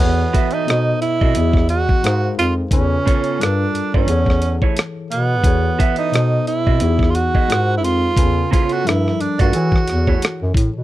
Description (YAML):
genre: R&B, neo-soul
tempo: 88 BPM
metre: 4/4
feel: swing 58% on 16ths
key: unclear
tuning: A4 = 439 Hz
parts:
  - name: breathy tenor saxophone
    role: melody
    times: 0.0-10.5 s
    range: B3 to F#4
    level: -20 LUFS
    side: right 4 dB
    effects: none
  - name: tine electric piano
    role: accompaniment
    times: 0.0-10.8 s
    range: B2 to G#5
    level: -24 LUFS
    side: left 6 dB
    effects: overdrive, slow stereo tremolo
  - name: breathy bass clarinet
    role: bass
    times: 0.0-10.8 s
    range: E2 to E3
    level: -19 LUFS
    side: equal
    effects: none
  - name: electric guitar through a small old amp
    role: second line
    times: 0.3-10.2 s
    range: A3 to E5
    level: -24 LUFS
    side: right 8 dB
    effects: none
  - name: dusty soul sampler-style drum kit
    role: drums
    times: 0.3-10.7 s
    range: hi-hat, kick drum, rim click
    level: -17 LUFS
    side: equal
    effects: none
room: little or no reverb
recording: dry, close 1970s-style studio recording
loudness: -15 LUFS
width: side -15 dB against mid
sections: 0.0-10.8 A section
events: none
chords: 0.0 B7sus4/E; 0.7 B7b9; 1.3 Emaj9; 2.0 G#13; 2.7 C#7b13/E; 3.4 Gm9; 4.1 Amaj9/E; 5.4 B7sus4/E; 6.1 B7b9; 6.8 Emaj9; 7.5 G#69; 8.2 C#7b13/E; 8.8 Gm9; 9.5 F#m9/E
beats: 0.67 1.35 2.03 | 2.71 3.39 4.08 4.76 | 5.44 6.12 6.80 7.48 | 8.17 8.85 9.53 10.21